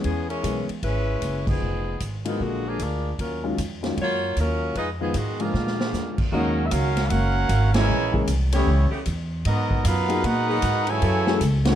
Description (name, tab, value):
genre	jazz, big band swing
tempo	153 BPM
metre	4/4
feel	swing 64% on 8ths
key	Eb minor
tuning	A4 = 439 Hz
part	warm saxophone section	melody	0.0-6.2 s	D3 to Db5	-28 LUFS	left 1 dB	none
part	warm baby grand piano	accompaniment	0.0-11.8 s	D3 to F5	-28 LUFS	left 3 dB	none
part	upright bass	bass	0.0-11.8 s	F1 to Bb2	-24 LUFS	equal	none
part	swinging big-band drum kit	drums	0.0-11.7 s	crash cymbal, hi-hat, kick drum, ride cymbal, snare drum	-30 LUFS	equal	none
part	clear trombone section	second line	5.4-11.8 s	Ab2 to Gb4	-29 LUFS	right 2 dB	none
part	clear trumpet section	melody	6.3-11.8 s	A3 to Ab5	-26 LUFS	right 2 dB	plate reverb
part	clear saxophone section	sustained chords	6.3-11.6 s	Db3 to A4	-31 LUFS	equal	none
room	light reverb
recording	dark, warm production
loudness	-21 LUFS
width	side -10 dB against mid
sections	0.0-6.3 A section; 6.3-11.8 B section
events	band accent 1.4, 7.7, 11.6; drum fill 5.5-5.9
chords	0.0 E6; 1.6 Fm7b5; 2.4 Bb7b13; 3.2 Ebm11; 4.8 Fm7b5; 5.5 Bb7; 6.3 Ebm11; 7.9 Bbm7b5; 8.7 A9; 9.5 Abm9; 11.0 Gbm9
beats	| 0.04 0.44 0.83 1.22 | 1.62 2.01 2.40 2.79 | 3.19 3.58 3.97 4.37 | 4.76 5.15 5.54 5.93 | 6.33 6.72 7.11 7.50 | 7.89 8.28 8.67 9.06 | 9.45 9.84 10.23 10.62 | 11.02 11.41